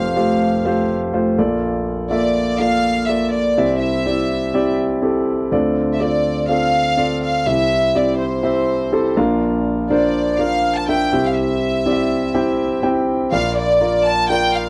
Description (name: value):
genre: pop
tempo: 123 BPM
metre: 4/4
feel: straight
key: unclear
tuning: A4 = 440 Hz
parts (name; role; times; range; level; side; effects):
- warm studio violin section; melody; 0.0-14.7 s; C5 to A5; -22 LUFS; equal; none
- warm concert grand piano; accompaniment; 0.0-14.7 s; F1 to G5; -20 LUFS; equal; none
room: light reverb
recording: dry, close 1970s-style studio recording, faint mains hum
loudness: -18 LUFS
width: mono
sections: 0.0-5.5 A section; 5.5-13.3 B section; 13.3-14.7 C section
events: none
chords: 0.0 Fadd9; 1.4 Bbmaj7; 3.6 C; 5.5 Dm7; 7.5 C; 9.2 Bb; 11.1 C; 13.3 Bb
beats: 0.16 0.65 1.13 | 1.62 2.11 2.60 3.08 | 3.57 4.06 4.54 5.03 | 5.52 6.01 6.49 6.98 | 7.47 7.96 8.44 8.93 | 9.42 9.91 10.39 10.88 | 11.37 11.86 12.34 12.83 | 13.32 13.80 14.29